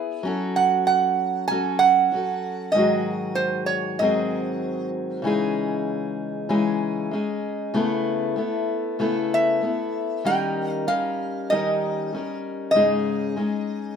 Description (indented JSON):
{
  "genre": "folk",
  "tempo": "96 BPM",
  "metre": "4/4",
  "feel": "straight",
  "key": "C# minor",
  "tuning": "A4 = 442 Hz",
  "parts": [
    { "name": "picked steel-string acoustic guitar", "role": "accompaniment", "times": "0.0-14.0 s", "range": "G#2 to B4", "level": "-24 LUFS", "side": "left 3 dB", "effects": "none" },
    { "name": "lap resonator guitar", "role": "melody", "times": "0.6-4.9, 9.3-14.0 s", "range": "B#4 to G#5", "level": "-21 LUFS", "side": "right 4 dB", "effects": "none" }
  ],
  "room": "moderate large studio reverb, RT60 1.1 s",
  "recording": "minimal, uncompressed stereo recording",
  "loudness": "-21 LUFS",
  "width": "side -7 dB against mid",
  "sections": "0.0-14.0 A section",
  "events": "none",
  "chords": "0.3 F#m; 2.8 G#7; 5.3 C#madd9; 7.8 Aadd9/C#; 10.2 D#7; 12.7 G#sus4"
}